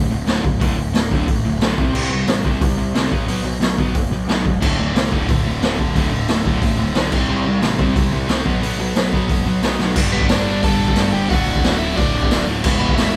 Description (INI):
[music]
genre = punk rock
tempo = 180 BPM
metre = 4/4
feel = straight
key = D mixolydian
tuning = A4 = 442 Hz
[part]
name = distorted electric guitar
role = riff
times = 0.0-13.2 s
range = D2 to C4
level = -27 LUFS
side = equal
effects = overdrive
[part]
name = raw garage guitar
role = riff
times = 0.0-10.0 s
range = D2 to C4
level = -28 LUFS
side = equal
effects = overdrive
[part]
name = fuzz picked electric bass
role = bass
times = 0.0-13.2 s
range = D1 to C2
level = -25 LUFS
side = equal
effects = overdrive
[part]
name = raw garage drum kit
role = drums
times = 0.3-13.1 s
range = crash cymbal, hi-hat, kick drum, snare drum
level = -21 LUFS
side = equal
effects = none
[part]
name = high-gain distorted guitar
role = riff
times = 4.6-13.2 s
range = D2 to G4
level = -27 LUFS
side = equal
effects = distortion
[part]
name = biting overdriven guitar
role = melody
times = 10.1-13.2 s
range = B3 to A5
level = -26 LUFS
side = equal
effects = none
[sound]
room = light reverb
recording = band playing live in one room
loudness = -18 LUFS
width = mono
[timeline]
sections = 0.0-10.0 A section; 10.0-13.2 B section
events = drum fill 9.8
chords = 0.0 D5; 1.8 C5; 3.1 B5; 4.6 D5; 7.1 C5; 8.5 B5; 10.0 G; 11.3 D; 12.6 E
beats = 0.27 | 0.61 0.94 1.28 1.61 | 1.95 2.28 2.61 2.95 | 3.28 3.62 3.95 4.28 | 4.62 4.95 5.28 5.62 | 5.95 6.29 6.62 6.96 | 7.29 7.62 7.96 8.29 | 8.63 8.96 9.30 9.63 | 9.97 10.30 10.64 10.97 | 11.30 11.64 11.97 12.30 | 12.63 12.97